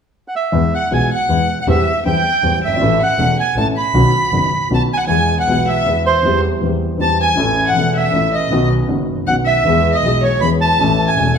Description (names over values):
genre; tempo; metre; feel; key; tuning
tango; 158 BPM; 3/4; rubato; E major; A4 = 440 Hz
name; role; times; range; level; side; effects
bandoneon; melody; 0.3-11.3 s; C5 to B5; -17 LUFS; right 4 dB; none
warm upright piano; accompaniment; 0.5-11.4 s; E1 to A4; -18 LUFS; left 2 dB; none
rich double bass; bass; 0.5-11.4 s; E1 to E2; -20 LUFS; right 1 dB; none
warm violin; second line; 0.7-11.3 s; C5 to B5; -21 LUFS; left 5 dB; none
room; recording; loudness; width
wet scoring stage reverb, RT60 1.4 s; minimal, uncompressed stereo recording; -13 LUFS; side -7 dB against mid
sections
0.5-5.1 A section; 5.1-11.4 B section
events
none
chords
0.0 N.C.; 0.5 E; 1.7 C/E; 2.8 A; 3.9 Badd9; 5.1 E; 6.2 C/E; 7.4 A; 8.5 Badd9; 9.7 E; 10.8 A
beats
0.15 | 0.53 0.91 1.29 | 1.67 2.05 2.43 | 2.81 3.19 3.57 | 3.95 4.33 4.71 | 5.10 5.48 5.86 | 6.24 6.62 7.00 | 7.38 7.76 8.14 | 8.51 8.89 9.28 | 9.66 10.04 10.42 | 10.80 11.19